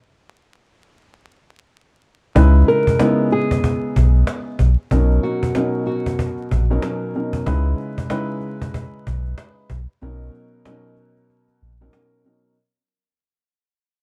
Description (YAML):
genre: hip hop, boom-bap hip-hop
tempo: 94 BPM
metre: 4/4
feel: swing 60% on 16ths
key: C# dorian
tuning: A4 = 440 Hz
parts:
  - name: dark upright piano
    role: accompaniment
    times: 2.4-12.6 s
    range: B2 to B4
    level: -24 LUFS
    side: equal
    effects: high-pass filter, low-pass filter
  - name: sub bass with octave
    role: bass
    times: 2.4-11.9 s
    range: A#1 to C#2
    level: -17 LUFS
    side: equal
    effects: none
  - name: cajon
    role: drums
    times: 2.4-12.3 s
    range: none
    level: -26 LUFS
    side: equal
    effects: none
  - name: nylon-string guitar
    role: melody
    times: 2.7-7.4 s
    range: F#4 to A#4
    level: -24 LUFS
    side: equal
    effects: high-pass filter, low-pass filter
room: small room ambience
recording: dark, warm production, vinyl crackle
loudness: -19 LUFS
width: mono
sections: 0.0-2.4 A section; 2.4-12.6 B section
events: break 0.0-2.4, 10.0-12.6; fade-out 2.4-12.6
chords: 0.0 N.C.; 2.4 C#m7; 4.9 Bmaj7; 7.5 C#m7; 10.0 Bmaj7